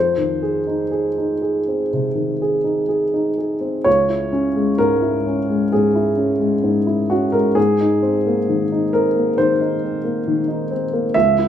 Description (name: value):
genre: neoclassical minimalist piano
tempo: 60-69 BPM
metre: 4/4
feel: rubato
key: unclear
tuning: A4 = 440 Hz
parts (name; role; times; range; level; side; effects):
- dark upright piano; solo; 0.0-11.5 s; C#2 to E5; -16 LUFS; equal; none
room: moderate large studio reverb, RT60 1.1 s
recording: band playing live in one room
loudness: -16 LUFS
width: side -10 dB against mid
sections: 0.0-3.9 A section; 3.9-11.5 B section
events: none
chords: 0.0 Fm7; 3.9 C#m; 7.6 G#add9